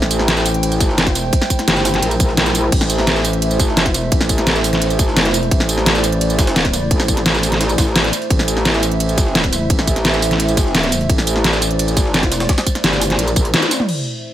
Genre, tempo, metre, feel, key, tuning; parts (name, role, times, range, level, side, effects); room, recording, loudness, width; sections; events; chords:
dark technical drum and bass; 172 BPM; 4/4; straight; A minor; A4 = 440 Hz
dark analog pad; sustained chords; 0.0-14.3 s; A3 to G5; -21 LUFS; right 1 dB; chorus, sidechain pumping
metallic wobble bass; bass; 0.0-13.5 s; G1 to Bb1; -19 LUFS; equal; chorus
dubstep drum kit; drums; 0.0-14.0 s; crash cymbal, hi-hat, ride cymbal, snare drum, tambourine, toms; -17 LUFS; equal
jungle sampler-style drum kit; drums; 0.1-13.9 s; hi-hat, snare drum; -27 LUFS; equal
electronic kick drum; drums; 0.8-13.4 s; -17 LUFS; equal; overdrive
light reverb; -13 LUFS; side -12 dB against mid
0.0-13.9 A section
drop 0.0-13.9; drum fill 13.5-13.9; band accent 13.5
0.0 Am